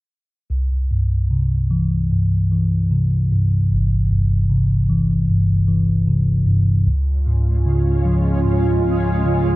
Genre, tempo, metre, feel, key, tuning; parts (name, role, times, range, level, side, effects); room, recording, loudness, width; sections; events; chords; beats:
pop; 76 BPM; 4/4; straight; A4 = 439 Hz
mellow tine electric piano; accompaniment; 0.5-9.6 s; G1 to F3; -16 LUFS; equal; phaser
shimmering ambient pad; sustained chords; 7.4-9.6 s; Ab3 to F4; -21 LUFS; right 2 dB; chorus, built-in reverb
light reverb, digital ambience; -15 LUFS; side -18 dB against mid
0.5-9.6 A section
0.5 C; 6.9 Db
| 0.50 1.30 2.10 2.91 | 3.71 4.50 5.29 6.08 | 6.87 7.66 8.45 9.24